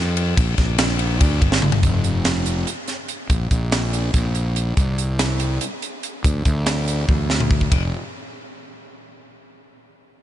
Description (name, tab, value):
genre	math rock and midwest emo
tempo	286 BPM (eighths)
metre	7/8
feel	straight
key	unclear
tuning	A4 = 440 Hz
part	fuzz fingered electric bass	bass	0.0-7.9 s	F1 to F2	-21 LUFS	equal	overdrive
part	crisp fusion drum kit	drums	0.2-7.8 s	hi-hat, kick drum, ride cymbal, snare drum, toms	-20 LUFS	equal	none
room	light reverb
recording	nothing above 10.8 kHz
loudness	-18 LUFS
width	side -12 dB against mid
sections	0.0-1.8 A section; 1.8-7.7 B section; 7.7-9.2 C section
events	drum fill 1.5-1.8, 7.1-7.7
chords	none